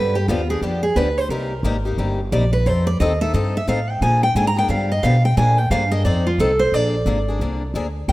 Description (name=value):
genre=acoustic string swing (jazz manouche)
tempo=177 BPM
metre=4/4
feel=swing 62% on 8ths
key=Bb mixolydian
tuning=A4 = 438 Hz
part: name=picked steel-string acoustic guitar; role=melody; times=0.0-8.1 s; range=F4 to Bb5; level=-20 LUFS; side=right 1 dB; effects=none
part: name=picked swing-style acoustic guitar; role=accompaniment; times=0.0-8.1 s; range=C3 to A4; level=-25 LUFS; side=left 3 dB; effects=none
part: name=upright bass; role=bass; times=0.0-8.1 s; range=G1 to B2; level=-20 LUFS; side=equal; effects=none
room=light reverb, small room reverb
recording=rough home demo mix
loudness=-17 LUFS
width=side -17 dB against mid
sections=0.0-6.7 A section; 6.7-8.1 A section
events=steel-string acoustic guitar solo 0.0-8.1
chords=0.0 G7; 1.3 Cm7; 2.7 F7; 4.0 Bb7; 4.7 G7; 5.4 Bb7; 6.0 F7; 6.7 Bb7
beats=0.28 0.62 0.96 | 1.30 1.64 1.98 2.32 | 2.66 3.00 3.33 3.67 | 4.01 4.35 4.69 5.03 | 5.37 5.71 6.04 6.38 | 6.72 7.06 7.40 7.74 | 8.08